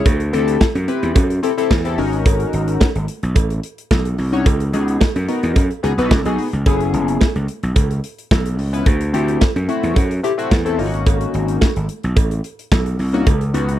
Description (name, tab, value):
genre	early-eighties boogie funk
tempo	109 BPM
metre	4/4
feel	straight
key	unclear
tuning	A4 = 440 Hz
part	chorused polysynth	accompaniment	0.0-13.8 s	G#3 to C#5	-20 LUFS	left 4 dB	none
part	gritty slap bass	bass	0.1-13.8 s	F#1 to F#2	-19 LUFS	equal	overdrive
part	modern studio drum kit	drums	0.1-13.8 s	hi-hat, kick drum, snare drum	-16 LUFS	equal	none
part	cowbell	percussion	0.1-13.4 s	none	-26 LUFS	right 11 dB	none
room	little or no reverb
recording	dry, close 1970s-style studio recording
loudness	-15 LUFS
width	side -12 dB against mid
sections	0.0-13.8 A section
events	none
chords	0.1 D9sus4; 2.0 G#9sus4; 4.5 C#9sus4; 6.7 F#9sus4; 8.9 D9sus4; 10.8 G#9sus4; 13.3 C#9sus4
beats	| 0.06 0.61 1.16 1.71 | 2.26 2.81 3.36 3.91 | 4.46 5.01 5.56 6.11 | 6.66 7.21 7.76 8.31 | 8.86 9.41 9.96 10.51 | 11.06 11.62 12.17 12.72 | 13.27